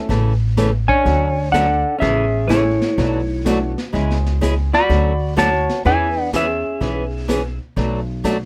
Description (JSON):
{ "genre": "country, western swing", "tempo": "125 BPM", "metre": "4/4", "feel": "swing 66% on 8ths", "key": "A major", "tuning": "A4 = 440 Hz", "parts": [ { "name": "warm upright piano", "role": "accompaniment", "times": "0.0-7.2 s", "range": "G#3 to G#4", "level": "-32 LUFS", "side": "equal", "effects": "none" }, { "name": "picked steel-string acoustic guitar", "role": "accompaniment", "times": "0.1-8.4 s", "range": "B2 to A4", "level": "-24 LUFS", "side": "equal", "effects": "none" }, { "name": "upright bass", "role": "bass", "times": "0.1-8.5 s", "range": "A1 to E2", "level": "-23 LUFS", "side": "equal", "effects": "none" }, { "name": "vintage brush drum kit", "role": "drums", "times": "0.1-8.5 s", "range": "brushed snare drum, hi-hat, kick drum, snare drum", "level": "-28 LUFS", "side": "equal", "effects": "none" }, { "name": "clean lap steel guitar", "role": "melody", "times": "0.9-7.6 s", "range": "E4 to B5", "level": "-21 LUFS", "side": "equal", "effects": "none" }, { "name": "hollow-body jazz guitar", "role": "second line", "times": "0.9-7.6 s", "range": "A3 to F#4", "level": "-28 LUFS", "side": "equal", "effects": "none" } ], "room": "little or no reverb", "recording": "none", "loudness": "-18 LUFS", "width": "mono", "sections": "0.0-8.5 A section", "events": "none", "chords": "0.1 A; 1.1 Dmaj7; 2.0 Amaj7; 3.0 Bm7; 3.9 C#m; 4.9 Dmaj7; 5.8 E6; 7.8 Bm7" }